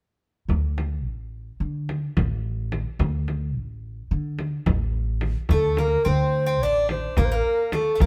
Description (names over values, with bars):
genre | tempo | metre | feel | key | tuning
Turkish makam ensemble | 216 BPM (eighths) | 9/8 | straight | unclear | A4 = 440 Hz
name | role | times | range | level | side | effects
upright bass | bass | 0.5-8.1 s | A1 to D3 | -27 LUFS | equal | none
frame drum | percussion | 0.5-8.1 s | none | -28 LUFS | equal | none
bansuri | melody | 5.5-8.1 s | A4 to D5 | -25 LUFS | equal | none
Greek bouzouki | second line | 5.5-8.1 s | A3 to D4 | -32 LUFS | equal | none
room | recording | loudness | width
light reverb | band playing live in one room | -24 LUFS | mono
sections
0.5-5.5 A section; 5.5-8.1 B section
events
none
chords
none